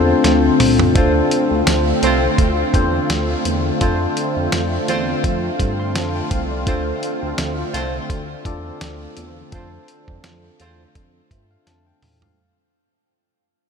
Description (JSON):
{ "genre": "1980s-style pop", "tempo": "84 BPM", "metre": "4/4", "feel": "swing 55% on 16ths", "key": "D minor", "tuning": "A4 = 440 Hz", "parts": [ { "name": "tine electric piano", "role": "accompaniment", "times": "0.0-12.6 s", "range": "C4 to C6", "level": "-20 LUFS", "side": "left 4 dB", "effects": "phaser" }, { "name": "warm analog pad", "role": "sustained chords", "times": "0.0-12.3 s", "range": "D3 to F4", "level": "-23 LUFS", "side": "right 2 dB", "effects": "chorus" }, { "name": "dark horn section", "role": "stabs", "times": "0.0-10.8 s", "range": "A3 to C5", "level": "-27 LUFS", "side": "right 2 dB", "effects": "ping-pong delay" }, { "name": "chorused synth bass", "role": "bass", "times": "0.0-12.3 s", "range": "C2 to G2", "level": "-23 LUFS", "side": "right 1 dB", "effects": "none" }, { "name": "dusty soul sampler-style drum kit", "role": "drums", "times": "0.2-12.4 s", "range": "hi-hat, kick drum, snare drum, tambourine, toms", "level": "-22 LUFS", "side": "right 1 dB", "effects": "none" } ], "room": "moderate huge ambient reverb, RT60 7.7 s", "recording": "dreamy mix soaked in reverb", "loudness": "-16 LUFS", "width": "side -6 dB against mid", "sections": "1.0-12.4 A section", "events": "drum fill 0.2-1.0, 11.7-12.4; fade-out 1.0-12.4", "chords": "0.0 Dm7; 3.8 F6; 6.7 Dm7; 9.5 F6" }